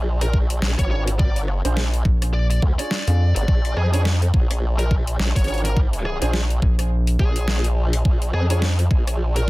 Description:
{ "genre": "glitch hop", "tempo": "105 BPM", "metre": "4/4", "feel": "swing 58% on 16ths", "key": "unclear", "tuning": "A4 = 442 Hz", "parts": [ { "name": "formant-sweep wobble bass", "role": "bass", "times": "0.0-9.5 s", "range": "Ab1 to F2", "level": "-20 LUFS", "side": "equal", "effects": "chorus, tube saturation" }, { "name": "fuzz lead guitar", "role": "melody", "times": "0.2-9.5 s", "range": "Ab4 to D5", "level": "-30 LUFS", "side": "left 1 dB", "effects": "distortion, vintage 12-bit sampler grit, digital delay" }, { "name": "dubstep drum kit", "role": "drums", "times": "0.2-9.5 s", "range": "hi-hat, rim click, snare drum", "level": "-27 LUFS", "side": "equal", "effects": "overdrive" }, { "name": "electronic kick drum", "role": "drums", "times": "0.3-9.5 s", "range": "none", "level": "-18 LUFS", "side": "equal", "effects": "overdrive" }, { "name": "dark baby grand piano", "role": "stabs", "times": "0.9-8.6 s", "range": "D4 to F5", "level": "-31 LUFS", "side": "right 2 dB", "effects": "sidechain pumping, digital delay" }, { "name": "rubbery square bass", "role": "bass", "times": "2.1-7.2 s", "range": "Bb1 to F2", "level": "-18 LUFS", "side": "equal", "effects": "none" } ], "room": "little or no reverb", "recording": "dense, heavily limited modern master", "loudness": "-18 LUFS", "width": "side -20 dB against mid", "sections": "0.0-9.5 A section", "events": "none", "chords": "0.0 Bb7" }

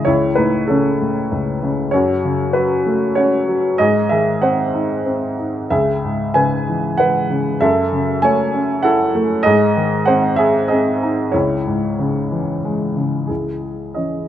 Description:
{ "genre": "classical, lyrical solo piano", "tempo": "96 BPM", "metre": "3/4", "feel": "rubato", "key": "C# minor", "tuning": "A4 = 442 Hz", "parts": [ { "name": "warm baby grand piano", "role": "solo", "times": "0.0-14.3 s", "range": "C#2 to G#5", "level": "-15 LUFS", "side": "equal", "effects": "none" } ], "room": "moderate scoring stage reverb, RT60 1.7 s", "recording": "none", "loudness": "-15 LUFS", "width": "side -11 dB against mid", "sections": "0.0-13.3 A section", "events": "none", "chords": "0.1 A/C#; 1.9 F#m; 3.8 G#; 5.7 C#m7; 7.6 F#m7; 9.4 G#; 11.3 C#m; 13.3 C#madd9" }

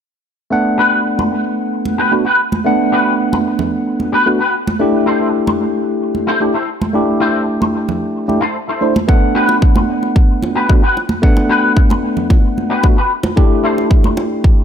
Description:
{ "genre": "nu-disco, nu disco", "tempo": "112 BPM", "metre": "4/4", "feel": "straight", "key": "G major", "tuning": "A4 = 441 Hz", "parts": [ { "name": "tine electric piano", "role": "accompaniment", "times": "0.5-14.6 s", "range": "A3 to F#5", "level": "-16 LUFS", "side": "equal", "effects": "phaser, dub echo" }, { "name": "electric guitar with an envelope filter", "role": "riff", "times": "0.8-14.2 s", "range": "E4 to C5", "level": "-17 LUFS", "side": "left 2 dB", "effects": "ensemble chorus, low-pass filter, dub echo" }, { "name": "congas and bongos", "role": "percussion", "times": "1.2-14.3 s", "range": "none", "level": "-21 LUFS", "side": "right 3 dB", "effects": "none" }, { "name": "electronic kick drum", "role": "drums", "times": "9.1-14.6 s", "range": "none", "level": "-11 LUFS", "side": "equal", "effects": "none" } ], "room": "light reverb, digital ambience", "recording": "none", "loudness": "-12 LUFS", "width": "side -8 dB against mid", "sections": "0.5-14.6 A section", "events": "none", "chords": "0.5 Gmaj7; 4.8 C6; 9.1 Gmaj7; 13.4 C6" }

